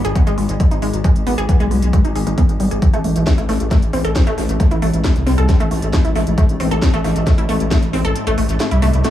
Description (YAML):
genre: driving peak-time techno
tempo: 135 BPM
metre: 4/4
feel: straight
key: unclear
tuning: A4 = 438 Hz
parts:
  - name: wide unison pluck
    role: riff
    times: 0.0-9.1 s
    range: G3 to A4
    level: -21 LUFS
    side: equal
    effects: tube saturation, sidechain pumping, dub echo
  - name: dark detuned saw bass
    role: bass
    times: 0.0-9.0 s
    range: G#1 to C2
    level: -19 LUFS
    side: equal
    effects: sidechain pumping
  - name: metallic inharmonic drone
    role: drone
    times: 0.0-9.1 s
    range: G#2 to G#3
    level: -26 LUFS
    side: left 1 dB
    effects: chorus, built-in reverb, phaser, sidechain pumping
  - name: techno drum kit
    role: drums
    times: 0.0-9.1 s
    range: hi-hat, snare drum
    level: -26 LUFS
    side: left 1 dB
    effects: overdrive, sidechain pumping on hats, small room reverb, dub echo
  - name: electronic kick drum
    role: drums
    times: 0.2-7.8 s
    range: none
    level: -15 LUFS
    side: equal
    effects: small room reverb
room: light reverb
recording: echo-heavy mix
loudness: -14 LUFS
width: side -12 dB against mid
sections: 0.0-9.1 A section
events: filter sweep on synth arpeggio sound 0.0-9.1; kick drops out 8.2-9.1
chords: 0.0 G#m; 2.8 N.C.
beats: 0.15 0.60 | 1.04 1.49 1.93 2.38 | 2.82 3.27 3.71 4.16 | 4.60 5.04 5.49 5.93 | 6.38 6.82 7.27 7.71 | 8.15 8.60 9.04